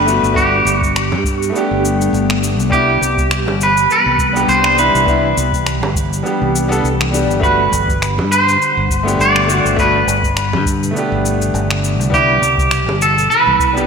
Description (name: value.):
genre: sunset chillout.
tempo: 102 BPM.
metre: 4/4.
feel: swing 56% on 16ths.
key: G major.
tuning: A4 = 438 Hz.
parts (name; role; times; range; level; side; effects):
twangy electric guitar; melody; 0.0-13.9 s; G4 to D5; -14 LUFS; right 2 dB; ping-pong delay, slapback echo.
bright concert grand piano; accompaniment; 0.0-13.9 s; G3 to A4; -19 LUFS; moving between left 4 dB and right 2 dB; auto-pan, ping-pong delay, slapback echo.
ethereal airy pad; sustained chords; 0.0-13.9 s; B2 to F#5; -22 LUFS; equal; ensemble chorus, built-in reverb, phaser.
fingered electric bass; bass; 0.0-13.9 s; G1 to G2; -19 LUFS; equal; none.
electronic cabasa and finger snaps; drums; 0.1-13.9 s; none; -23 LUFS; left 2 dB; overdrive.
electronic kick drum; drums; 0.4-13.7 s; none; -21 LUFS; equal; overdrive.
bongos; percussion; 1.1-13.0 s; none; -27 LUFS; right 3 dB; slapback echo.
room: wet lush hall reverb, RT60 2.0 s.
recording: big arena sound.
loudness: -12 LUFS.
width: side -6 dB against mid.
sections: 0.0-13.9 A section.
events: none.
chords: 0.0 Gmaj7; 2.7 Cmaj7; 7.4 Gmaj7; 12.1 Cmaj7.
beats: | 0.36 0.95 1.54 2.13 | 2.72 3.31 3.89 4.48 | 5.07 5.66 6.25 6.83 | 7.42 8.01 8.60 9.19 | 9.78 10.37 10.95 11.54 | 12.13 12.72 13.31.